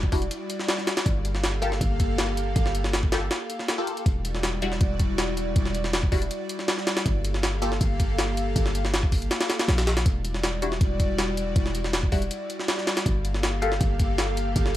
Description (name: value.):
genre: drum and bass, jungle.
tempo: 160 BPM.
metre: 4/4.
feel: straight.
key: E minor.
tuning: A4 = 440 Hz.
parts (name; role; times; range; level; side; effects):
warm 808-style bass; bass; 0.0-14.8 s; E1 to Bb1; -27 LUFS; equal; none.
jungle sampler-style drum kit; drums; 0.0-14.8 s; hi-hat, kick drum, snare drum; -25 LUFS; equal; none.
airy breathy pad; sustained chords; 0.1-14.7 s; G3 to F5; -31 LUFS; equal; chorus.
filtered dub chord stab; stabs; 0.1-7.7, 10.6-13.7 s; G3 to A4; -32 LUFS; left 2 dB; phaser, analog chorus, cassette tape, dub echo.
room: digital ambience.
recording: vinyl crackle.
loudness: -22 LUFS.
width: side -14 dB against mid.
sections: 0.0-14.8 A section.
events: none.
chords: 0.0 Em9; 1.1 Gm9; 4.1 Em9; 7.1 Gm9; 10.1 Em9; 13.1 Gm9.